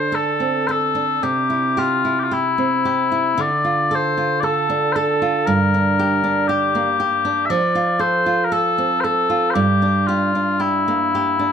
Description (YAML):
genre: celtic folk, Celtic slow air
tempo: 54-60 BPM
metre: 4/4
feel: rubato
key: unclear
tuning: A4 = 440 Hz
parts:
  - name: mellow small bagpipes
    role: melody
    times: 0.0-11.5 s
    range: E4 to E5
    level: -18 LUFS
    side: left 4 dB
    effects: none
  - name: flamenco guitar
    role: accompaniment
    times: 0.0-11.5 s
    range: G2 to A4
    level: -20 LUFS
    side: right 4 dB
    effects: none
room: light reverb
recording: close, detailed microphones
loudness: -16 LUFS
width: side -7 dB against mid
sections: 0.0-11.5 A section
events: none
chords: 0.0 D5; 1.2 C; 3.4 Dm; 5.5 Gm; 7.5 F